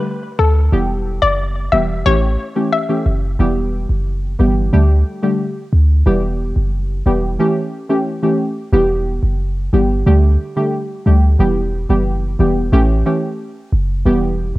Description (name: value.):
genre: dancehall.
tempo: 90 BPM.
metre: 4/4.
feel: straight.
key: E dorian.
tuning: A4 = 437 Hz.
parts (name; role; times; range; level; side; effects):
deep mellow chord stab; accompaniment; 0.0-14.6 s; D3 to G4; -17 LUFS; equal; chorus, cassette tape.
hollow square pluck; melody; 0.4-3.2 s; A4 to E5; -19 LUFS; left 4 dB; chorus, cassette tape, analog delay.
clean 808-style bass; bass; 0.4-14.6 s; E1 to D2; -15 LUFS; equal; none.
room: light reverb, digital ambience.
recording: home recording on cassette.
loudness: -14 LUFS.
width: side -18 dB against mid.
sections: 0.0-8.7 A section; 8.7-14.6 B section.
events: none.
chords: 0.0 Dsus4; 0.7 Em; 2.1 A7; 3.4 Em; 4.7 Dsus4; 6.1 Em; 7.4 A7; 8.7 Em; 10.1 Dsus4; 11.4 Em; 12.7 A7; 14.1 Em.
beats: 0.06 | 0.73 1.39 2.06 2.73 | 3.39 4.06 4.73 5.39 | 6.06 6.73 7.39 8.06 | 8.73 9.39 10.06 10.73 | 11.39 12.06 12.73 13.39 | 14.06.